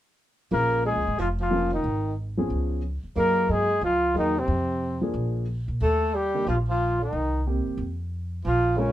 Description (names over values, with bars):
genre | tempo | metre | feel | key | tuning
jazz, small-group swing and bop | 182 BPM | 4/4 | swing 62% on 8ths | Bb minor | A4 = 440 Hz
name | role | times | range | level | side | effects
warm flugelhorn | melody | 0.5-8.9 s | C4 to Bb4 | -25 LUFS | left 2 dB | none
breathy tenor saxophone | second line | 0.5-8.9 s | C3 to Bb3 | -29 LUFS | right 4 dB | none
dark baby grand piano | accompaniment | 0.5-8.9 s | Eb3 to Bb4 | -29 LUFS | left 1 dB | none
upright bass | bass | 0.5-8.9 s | F1 to Bb2 | -28 LUFS | equal | none
room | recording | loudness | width
moderate small room reverb, RT60 0.6 s | minimal, uncompressed stereo recording | -23 LUFS | side -13 dB against mid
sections
0.5-8.9 A section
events
none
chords
0.5 Bbm7; 1.8 Abm; 2.5 Db7; 3.2 Gb69; 4.5 Fm; 5.1 Bb7; 5.8 Eb; 7.1 Cm7; 7.8 N.C.